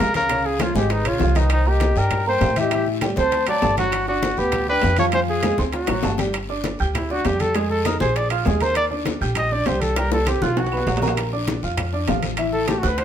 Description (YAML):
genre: Afro-Cuban jazz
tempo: 199 BPM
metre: 4/4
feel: straight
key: unclear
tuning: A4 = 440 Hz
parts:
  - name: warm trumpet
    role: melody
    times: 0.0-13.0 s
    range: Eb4 to Eb5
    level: -22 LUFS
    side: equal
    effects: none
  - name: mellow concert flute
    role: second line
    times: 0.0-6.2 s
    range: Cb5 to A5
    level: -30 LUFS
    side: left 4 dB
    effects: none
  - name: warm upright piano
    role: accompaniment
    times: 0.0-13.0 s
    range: Db3 to Ab6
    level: -25 LUFS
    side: right 1 dB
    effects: none
  - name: upright bass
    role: bass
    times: 0.0-13.0 s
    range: G1 to A2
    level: -24 LUFS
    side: equal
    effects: none
  - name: bongos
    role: percussion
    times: 0.0-13.0 s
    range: none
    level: -30 LUFS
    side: left 5 dB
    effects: none
  - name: congas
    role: percussion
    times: 0.0-13.0 s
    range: none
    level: -30 LUFS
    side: left 1 dB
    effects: none
  - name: guiro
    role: percussion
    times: 0.0-13.0 s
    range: none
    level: -37 LUFS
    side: left 6 dB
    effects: none
  - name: timbales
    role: percussion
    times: 0.1-13.0 s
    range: none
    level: -30 LUFS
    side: right 6 dB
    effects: none
  - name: claves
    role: percussion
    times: 0.3-12.8 s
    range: none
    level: -38 LUFS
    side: right 8 dB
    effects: none
room: moderate stone room reverb, RT60 1.1 s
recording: band playing live in one room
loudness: -18 LUFS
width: side -9 dB against mid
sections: 0.0-6.3 A section; 6.3-13.0 B section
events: drum fill 5.9-6.3, 10.0-11.2; trumpet solo 6.3-13.0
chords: 0.3 Dbadd9; 1.5 Cm7; 2.7 Am7; 3.3 D7; 3.9 Gmaj7; 5.1 Fm; 5.7 D7; 6.3 G5; 7.6 Bb5; 8.8 Ebmaj7; 10.0 C5; 10.6 B5; 11.2 Bb; 12.4 A5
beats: 0.00 | 0.30 0.60 0.90 1.21 | 1.51 1.81 2.11 2.42 | 2.72 3.02 3.32 3.62 | 3.93 4.23 4.53 4.83 | 5.13 5.44 5.74 6.04 | 6.34 6.65 6.95 7.25 | 7.55 7.86 8.16 8.46 | 8.76 9.06 9.37 9.67 | 9.97 10.27 10.57 10.87 | 11.18 11.48 11.78 12.08 | 12.38 12.69 12.99